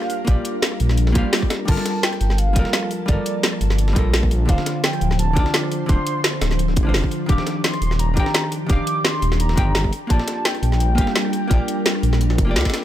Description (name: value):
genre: liquid drum and bass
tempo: 171 BPM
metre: 4/4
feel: swing 53% on 16ths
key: G minor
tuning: A4 = 441 Hz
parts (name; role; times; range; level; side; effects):
- warm velvety synth lead; melody; 0.0-12.5 s; D5 to D6; -28 LUFS; equal; chorus, digital delay
- hollow-body jazz guitar; accompaniment; 0.0-12.8 s; D3 to G5; -26 LUFS; equal; none
- ethereal airy pad; sustained chords; 0.0-12.8 s; F3 to A5; -28 LUFS; left 1 dB; ensemble chorus, built-in reverb, sidechain pumping
- breakbeat sampler-style drum kit; drums; 0.0-12.8 s; hi-hat, snare drum; -28 LUFS; equal; high-pass filter on hats, high-pass filter on snare
- garage drum kit; drums; 0.0-12.8 s; crash cymbal, hi-hat, rim click, snare drum; -24 LUFS; equal; none
- swelling detuned saw bass; bass; 0.3-12.6 s; D1 to D2; -19 LUFS; equal; tube saturation
- electronic kick drum; drums; 0.3-12.7 s; none; -18 LUFS; equal; none
- swell; sound effects; 1.2-1.7 s; none; -30 LUFS; right 6 dB; none
room: little or no reverb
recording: faint mains hum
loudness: -17 LUFS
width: side -12 dB against mid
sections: 0.0-12.8 A section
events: swell 1.2-1.7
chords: 0.0 Bb6; 1.7 Gm9; 4.5 Dm7; 7.3 Ebmaj9; 9.9 Bb6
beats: | 0.28 0.63 0.98 1.33 | 1.68 2.03 2.38 2.73 | 3.08 3.43 3.79 4.14 | 4.49 4.84 5.19 5.54 | 5.89 6.24 6.59 6.94 | 7.29 7.64 8.00 8.35 | 8.70 9.05 9.40 9.75 | 10.10 10.45 10.80 11.15 | 11.50 11.86 12.21 12.56